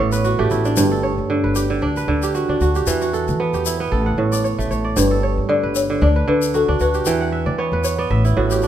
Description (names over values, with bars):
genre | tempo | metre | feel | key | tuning
west african traditional, West African string and xylophone music | 114 BPM | 4/4 | swing 55% on 16ths | G lydian | A4 = 439 Hz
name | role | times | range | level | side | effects
balafon | melody | 0.0-0.5, 5.0-8.7 s | A4 to D5 | -20 LUFS | left 4 dB | none
kora | arpeggios | 0.0-8.7 s | G2 to G5 | -19 LUFS | right 3 dB | none
upright bass | bass | 0.0-8.7 s | G1 to E3 | -21 LUFS | equal | none
tube shaker | percussion | 0.1-8.7 s | none | -29 LUFS | left 8 dB | none
room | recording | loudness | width
light reverb | minimal, uncompressed stereo recording | -16 LUFS | side -10 dB against mid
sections
0.0-8.7 A section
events
kora fill 0.0-0.8, 7.1-8.7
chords
0.0 A13; 0.8 G; 1.8 D; 2.9 Em; 3.9 A; 5.0 G; 6.0 D; 7.1 Em; 8.1 A13sus4